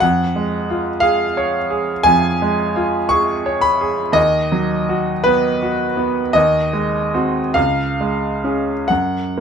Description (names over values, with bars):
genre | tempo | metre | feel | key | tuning
classical, romantic nocturne for solo piano | 42-60 BPM | 4/4 | rubato | unclear | A4 = 439 Hz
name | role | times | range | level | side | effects
bright baby grand piano | solo | 0.0-9.4 s | C#2 to C#6 | -15 LUFS | equal | none
room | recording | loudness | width
light reverb | close, detailed microphones | -15 LUFS | side -7 dB against mid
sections
0.0-9.4 A section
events
none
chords
0.0 C#/E#; 4.2 B/D#; 6.4 G#7/D#; 7.6 C#; 8.9 N.C.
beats
| 0.02 1.03 2.06 3.12 | 4.17 5.26 6.35 7.56 | 8.89